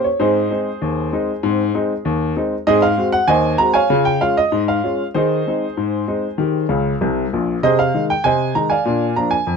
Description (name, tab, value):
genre	ragtime piano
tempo	97 BPM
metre	2/4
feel	straight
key	Ab major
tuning	A4 = 440 Hz
part	clear upright piano	solo	0.0-9.6 s	Bb1 to Bb5	-16 LUFS	equal	none
room	light reverb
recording	close, detailed microphones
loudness	-15 LUFS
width	side -5 dB against mid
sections	0.0-9.6 A section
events	upright piano fill 6.7-7.6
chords	0.2 Ab; 2.7 Ab7; 3.9 Db; 5.1 Ab/Eb; 6.4 Eb; 7.6 Ab/C; 8.9 Bb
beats	| 0.20 0.82 | 1.44 2.05 | 2.67 3.29 | 3.90 4.52 | 5.14 5.76 | 6.38 7.01 | 7.63 8.25 | 8.86 9.48